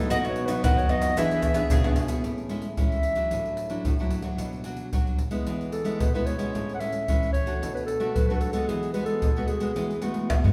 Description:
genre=samba and choro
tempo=112 BPM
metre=4/4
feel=straight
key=A major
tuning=A4 = 440 Hz
part: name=dark clarinet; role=melody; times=0.0-10.5 s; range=A3 to F#5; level=-32 LUFS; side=equal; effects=none
part: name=mandolin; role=second line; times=0.0-2.2 s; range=E4 to G#4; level=-32 LUFS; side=equal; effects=none
part: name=nylon-string guitar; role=accompaniment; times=0.0-10.5 s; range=F#2 to G#4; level=-32 LUFS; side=equal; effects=none
part: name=nylon-string guitar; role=bass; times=0.0-2.2 s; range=B2 to E3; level=-35 LUFS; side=equal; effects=none
part: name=maracas, surdo, pandeiro and tamborim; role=percussion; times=0.1-10.5 s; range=none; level=-29 LUFS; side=equal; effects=none
room=wet recital hall reverb, RT60 1.4 s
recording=recorded in a church or concert hall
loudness=-26 LUFS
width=mono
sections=0.0-2.2 A section; 2.2-10.5 B section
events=drum fill 10.3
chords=0.1 B; 1.2 E7; 2.2 Amaj7; 3.3 Dadd9/A; 4.4 Bm; 5.5 E; 6.5 Amaj7; 7.6 Bm7; 8.7 Eadd9

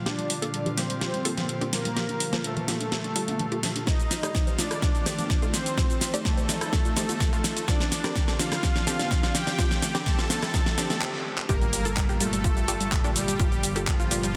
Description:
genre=progressive house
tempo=126 BPM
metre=4/4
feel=straight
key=G minor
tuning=A4 = 439 Hz
part: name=airy breathy pad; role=sustained chords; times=0.0-14.4 s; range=Bb2 to F4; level=-38 LUFS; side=equal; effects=chorus, sidechain pumping
part: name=unison pluck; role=stabs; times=0.0-14.2 s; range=Eb3 to A4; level=-37 LUFS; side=equal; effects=sidechain pumping, delay
part: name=soft supersaw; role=melody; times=0.1-14.4 s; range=F3 to A5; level=-34 LUFS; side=equal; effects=sidechain pumping, low-pass filter, delay
part: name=tight sequenced synth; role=arpeggios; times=0.1-14.3 s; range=G3 to D5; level=-39 LUFS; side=equal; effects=chorus, vintage 12-bit sampler grit, sidechain pumping, delay
part: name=pop drum kit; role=drums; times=0.1-14.3 s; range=handclaps, hi-hat, shaker, snare drum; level=-31 LUFS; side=equal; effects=none
part: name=electronic congas and rim click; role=percussion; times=0.7-11.0 s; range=none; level=-39 LUFS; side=equal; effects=sidechain pumping on perc, soft clipping on snare, sidechain pumping on snare
part: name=electronic kick drum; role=drums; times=3.9-14.0 s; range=none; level=-28 LUFS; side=equal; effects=none
part: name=plucky analog bass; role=bass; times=11.5-14.4 s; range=G1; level=-35 LUFS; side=equal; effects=sidechain pumping
part: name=impact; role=sound effects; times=11.5-13.4 s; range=none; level=-38 LUFS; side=equal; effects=none
room=moderate lush hall reverb, RT60 2.4 s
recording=dense, heavily limited modern master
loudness=-26 LUFS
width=mono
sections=0.0-11.5 A section; 11.5-14.4 B section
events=build-up 0.0-11.5; drum fill 0.0-11.0, 11.0-11.5; filter sweep on synth arpeggio sound 0.0-11.5; filter sweep on synth pluck 0.0-11.5; filter sweep on supersaw synth 0.0-11.5; stop 11.0-11.5; drop 11.5-14.4; impact 11.5-13.4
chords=0.0 Gm7; 3.9 F7; 7.7 Dm7; 11.5 Gm7

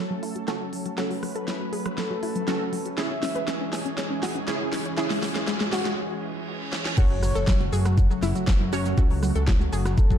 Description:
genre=progressive house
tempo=120 BPM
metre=4/4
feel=straight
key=F# minor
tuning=A4 = 441 Hz
part: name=lush unison pad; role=sustained chords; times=0.0-10.2 s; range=C#3 to B4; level=-32 LUFS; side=equal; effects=chorus, sidechain pumping
part: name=analog pluck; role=arpeggios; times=0.0-10.2 s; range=F#3 to B4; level=-31 LUFS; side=left 1 dB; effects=chorus, sidechain pumping, ping-pong delay
part: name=wide unison pluck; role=stabs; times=0.0-10.2 s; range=C#4 to C#5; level=-32 LUFS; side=right 3 dB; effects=analog chorus, sidechain pumping, ping-pong delay
part: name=riser, reverse cymbal and impact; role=sound effects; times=1.4-9.0 s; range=none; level=-37 LUFS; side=right 1 dB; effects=none
part: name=pop drum kit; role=drums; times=0.2-10.2 s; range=crash cymbal, hi-hat, rim click, shaker, snare drum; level=-32 LUFS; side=equal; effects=high-pass filter on perc, high-pass filter on snare, high-pass filter on hats, high-pass filter on cymbals
part: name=soft octave-layered synth lead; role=melody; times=2.0-3.6, 7.0-10.2 s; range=A4 to E5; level=-34 LUFS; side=left 1 dB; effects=chorus, cassette tape, sidechain pumping, tape echo
part: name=fat analog bass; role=bass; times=7.0-10.1 s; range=F#1 to F#2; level=-25 LUFS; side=equal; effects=tube saturation, sidechain pumping
part: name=breakbeat sampler-style drum kit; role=drums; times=7.0-10.1 s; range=hi-hat, shaker, snare drum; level=-45 LUFS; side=right 1 dB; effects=none
part: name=electronic kick drum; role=drums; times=7.0-10.2 s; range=none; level=-20 LUFS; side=equal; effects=none
room=moderate digital room reverb, RT60 0.9 s, digital ambience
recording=dark, warm production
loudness=-23 LUFS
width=side -9 dB against mid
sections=0.0-7.0 A section; 7.0-10.2 B section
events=build-up 0.0-7.0; drum fill 0.0-6.0, 6.7; filter sweep on synth arpeggio sound 0.0-7.0; filter sweep on synth pluck 0.0-7.0; break 6.0-7.0; reverse cymbal 6.0-7.0; drop 7.0-10.2; impact 7.0-9.0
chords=0.0 F#m; 3.0 C#m; 7.0 F#m

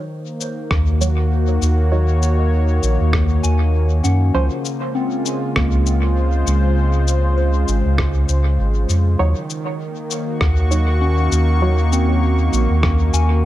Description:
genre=ambient dub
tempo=99 BPM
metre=4/4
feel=swing 57% on 16ths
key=Eb dorian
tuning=A4 = 440 Hz
part: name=warm analog pad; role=sustained chords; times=0.0-13.4 s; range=Db3 to Db6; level=-22 LUFS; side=equal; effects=chorus
part: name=soft synth bell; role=arpeggios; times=0.0-13.4 s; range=Bb3 to Ab5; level=-27 LUFS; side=left 1 dB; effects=chorus, phaser, dub echo
part: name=electronic shaker and rim click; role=drums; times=0.4-13.3 s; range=none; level=-25 LUFS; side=left 2 dB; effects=dub echo
part: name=soft dub sub bass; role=bass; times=0.7-13.4 s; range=Ab1 to Gb2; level=-16 LUFS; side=equal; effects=none
part: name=electronic kick drum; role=drums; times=0.7-13.0 s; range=none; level=-23 LUFS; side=equal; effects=none
part: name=filtered dub chord stab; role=stabs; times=1.0-4.6, 9.2-11.8 s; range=F3 to Db5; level=-26 LUFS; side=right 3 dB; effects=chorus, dub echo
room=light reverb, digital ambience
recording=none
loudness=-15 LUFS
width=side -14 dB against mid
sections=0.0-13.4 A section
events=none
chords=0.0 Ebm7; 4.3 Dbmaj7; 9.2 Ebm7

